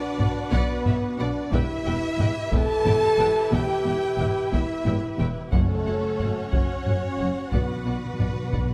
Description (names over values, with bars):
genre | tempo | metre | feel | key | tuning
cinematic, epic orchestral film score | 60 BPM (dotted quarters) | 6/8 | straight | B minor | A4 = 436 Hz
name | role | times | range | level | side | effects
warm symphonic violin section | second line | 0.0-8.7 s | A4 to A5 | -36 LUFS | equal | none
mellow French horn section | sustained chords | 0.0-8.7 s | A3 to A4 | -29 LUFS | equal | none
warm symphonic string section | sustained chords | 0.0-8.7 s | C#4 to F#5 | -36 LUFS | equal | none
warm symphonic violin section | melody | 0.2-8.6 s | E5 to G5 | -45 LUFS | equal | none
warm symphonic viola section | accompaniment | 0.2-8.6 s | F#4 to E5 | -41 LUFS | equal | none
dark symphonic cello section | bass | 0.2-8.6 s | E2 to B2 | -33 LUFS | equal | none
warm symphonic double bass section | bass | 0.2-8.6 s | E1 to B1 | -33 LUFS | equal | none
taiko ensemble | drums | 0.2-8.7 s | none | -29 LUFS | equal | none
timpani | percussion | 5.5-8.7 s | F#2 to B2 | -34 LUFS | equal | none
room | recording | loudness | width
light reverb | close, detailed microphones | -24 LUFS | mono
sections
0.0-8.7 A section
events
timpani fill 7.5-8.7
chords
0.0 Bm; 1.5 Em; 5.5 F#m; 7.5 Bm